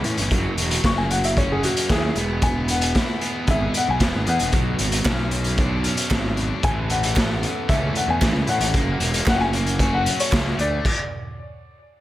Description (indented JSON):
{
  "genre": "indie rock",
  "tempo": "114 BPM",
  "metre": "4/4",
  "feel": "straight",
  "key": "E mixolydian",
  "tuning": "A4 = 440 Hz",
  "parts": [
    { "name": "warm upright piano", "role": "melody", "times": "0.0-11.1 s", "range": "E4 to C#6", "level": "-26 LUFS", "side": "left 3 dB", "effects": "digital delay" },
    { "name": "crunchy overdriven guitar", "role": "riff", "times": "0.0-10.8 s", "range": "E3 to G#4", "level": "-29 LUFS", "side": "left 6 dB", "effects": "none" },
    { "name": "crunchy overdriven guitar", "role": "riff", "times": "0.0-10.6 s", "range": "E2 to A4", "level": "-30 LUFS", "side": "right 7 dB", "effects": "wide subtle chorus, digital delay" },
    { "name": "fuzz picked electric bass", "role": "bass", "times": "0.0-10.8 s", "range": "E1 to A2", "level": "-24 LUFS", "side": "equal", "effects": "overdrive" },
    { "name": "raw garage drum kit", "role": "drums", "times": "0.0-11.0 s", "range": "crash cymbal, hi-hat, kick drum, snare drum", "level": "-22 LUFS", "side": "equal", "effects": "none" },
    { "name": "group handclap", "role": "percussion", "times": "5.1-10.4 s", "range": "none", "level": "-32 LUFS", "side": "right 6 dB", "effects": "none" }
  ],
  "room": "small room ambience",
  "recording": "none",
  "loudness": "-18 LUFS",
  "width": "side -14 dB against mid",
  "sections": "0.0-12.0 A section",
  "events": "upright piano solo 0.0-12.0; stop 10.9-12.0",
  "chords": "0.3 F#; 2.2 E; 4.5 Bmadd9; 6.6 Aadd9; 8.7 F#; 10.6 D5"
}